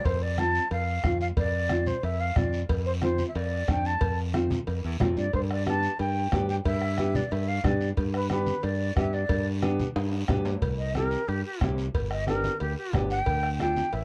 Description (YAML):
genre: latin, cumbia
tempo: 182 BPM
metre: 4/4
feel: straight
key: unclear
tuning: A4 = 440 Hz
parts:
  - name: breathy mellow silver concert flute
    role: melody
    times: 0.0-14.0 s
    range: G4 to A5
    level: -32 LUFS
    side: equal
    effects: plate reverb
  - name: modern bright fingered electric bass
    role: bass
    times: 0.0-14.0 s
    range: G1 to G2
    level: -32 LUFS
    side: equal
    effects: none
  - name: bombo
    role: percussion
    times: 0.0-13.8 s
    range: none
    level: -32 LUFS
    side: equal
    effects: none
  - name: guiro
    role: percussion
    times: 0.0-14.0 s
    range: none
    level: -48 LUFS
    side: equal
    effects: none
  - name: cowbell and timbales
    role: percussion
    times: 0.1-14.0 s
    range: none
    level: -39 LUFS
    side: equal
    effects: none
  - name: nylon-string guitar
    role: accompaniment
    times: 0.4-13.8 s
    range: A3 to A4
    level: -32 LUFS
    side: equal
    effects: none
  - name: congas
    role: percussion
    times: 0.4-13.9 s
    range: none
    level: -36 LUFS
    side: equal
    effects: none
room: light reverb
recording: worn, warbling old tape, cassette tape, warbly pitch drift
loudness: -27 LUFS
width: mono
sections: 0.0-10.6 A section; 10.6-14.0 B section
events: drum fill 10.0-10.6; flute solo 10.6-14.0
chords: 0.0 F6; 5.3 G; 10.6 C; 11.9 G; 13.3 Dm